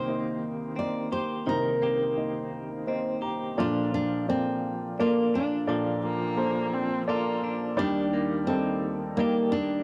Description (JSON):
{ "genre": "acoustic folk-pop ballad", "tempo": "86 BPM", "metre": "3/4", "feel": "straight", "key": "Bb major", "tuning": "A4 = 440 Hz", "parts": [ { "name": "nylon-string guitar", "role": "melody", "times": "0.0-9.8 s", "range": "Bb3 to D5", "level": "-31 LUFS", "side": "equal", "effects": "none" }, { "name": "warm upright piano", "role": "accompaniment", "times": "0.0-9.8 s", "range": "Bb1 to Bb5", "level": "-32 LUFS", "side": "equal", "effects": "none" }, { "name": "direct-recorded clean electric guitar", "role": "arpeggios", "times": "0.0-9.8 s", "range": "Eb3 to G4", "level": "-36 LUFS", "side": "equal", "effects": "tremolo" }, { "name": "dark viola", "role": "second line", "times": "6.0-7.6 s", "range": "Bb3 to C4", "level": "-34 LUFS", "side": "equal", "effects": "none" } ], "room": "moderate booth ambience, RT60 0.2 s", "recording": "home recording on cassette", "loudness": "-28 LUFS", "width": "mono", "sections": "0.0-3.6 A section; 3.6-9.8 B section", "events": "none", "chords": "0.0 Cm7; 3.6 Bbmaj7; 7.8 Ebmaj7" }